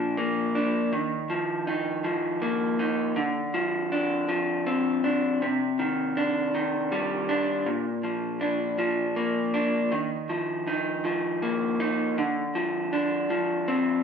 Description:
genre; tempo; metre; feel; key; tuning
rock; 53 BPM (dotted quarters); 6/8; straight; unclear; A4 = 439 Hz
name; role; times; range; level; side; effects
electric guitar through a small old amp; solo; 0.0-14.0 s; Bb2 to Eb4; -24 LUFS; equal; none
room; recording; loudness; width
wet large studio reverb, RT60 1.2 s; band playing live in one room; -24 LUFS; side -6 dB against mid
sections
0.0-14.0 A section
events
none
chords
0.0 Bb; 0.9 Ebsus2; 3.2 Dm7; 5.4 Cmadd9; 7.7 Bb; 9.9 Ebsus2; 12.2 Dm7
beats
| 0.93 2.05 | 3.17 4.30 | 5.42 6.54 | 7.67 8.80 | 9.92 11.05 | 12.18 13.30

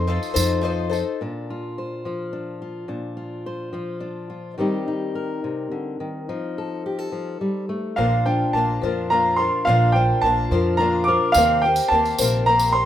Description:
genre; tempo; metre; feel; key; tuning
indie folk with a building arrangement; 71 BPM (dotted quarters); 6/8; straight; Bb major; A4 = 439 Hz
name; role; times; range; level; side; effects
clear upright piano; melody; 0.0-0.9, 8.0-12.9 s; F5 to D6; -20 LUFS; right 1 dB; slapback echo
picked twelve-string acoustic guitar; accompaniment; 0.0-1.2, 8.0-12.9 s; C3 to C5; -24 LUFS; left 6 dB; none
upright bass; bass; 0.0-1.0, 8.0-12.8 s; Bb1 to F2; -24 LUFS; right 1 dB; none
tambourine; percussion; 0.2-1.0, 11.3-12.7 s; none; -28 LUFS; right 4 dB; none
fingerpicked steel-string acoustic guitar; accompaniment; 1.2-11.4 s; Bb2 to C5; -26 LUFS; left 2 dB; none
room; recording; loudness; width
light reverb, small room ambience; rough home demo mix; -19 LUFS; side -11 dB against mid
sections
0.0-1.2 A section; 1.2-8.0 B section; 8.0-12.9 C section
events
build-up 8.0-12.9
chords
0.0 F7; 1.2 Bbadd9; 4.6 Eb6; 6.3 F7; 8.0 Bbadd9; 11.3 Eb6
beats
0.36 | 1.21 2.05 | 2.90 3.75 | 4.59 5.44 | 6.29 7.13 | 7.98 8.82 | 9.67 10.51 | 11.35 12.19

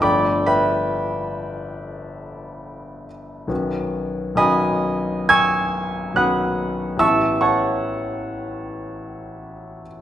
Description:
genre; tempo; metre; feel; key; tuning
classical, impressionist solo piano; 62-75 BPM; 4/4; rubato; unclear; A4 = 435 Hz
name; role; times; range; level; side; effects
clear grand piano; solo; 0.0-10.0 s; G1 to G#6; -19 LUFS; equal; none
room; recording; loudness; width
wet recital hall reverb, RT60 1.6 s; recorded in a church or concert hall; -18 LUFS; side -11 dB against mid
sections
0.0-10.0 A section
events
none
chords
0.0 G9; 3.5 Badd9; 7.0 A9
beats
| 0.01 0.89 1.79 2.66 | 3.50 4.37 5.31 6.18 | 7.01 7.83 8.65 9.47

